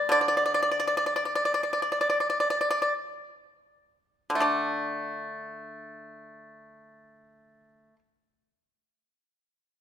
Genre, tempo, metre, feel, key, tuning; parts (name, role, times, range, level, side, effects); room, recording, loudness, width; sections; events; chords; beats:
chinese traditional, Chinese solo plucked strings; 47-67 BPM; 4/4; rubato; A4 = 440 Hz
pipa; solo; 0.0-8.0 s; D3 to D5; -25 LUFS; equal
moderate recital hall reverb, RT60 1.7 s; minimal, uncompressed stereo recording; -24 LUFS; side -10 dB against mid
0.0-4.4 A section; 4.4-9.3 B section
slowing down 0.0-4.4
| 0.11 1.06 2.08 3.20 | 4.43 5.65 6.83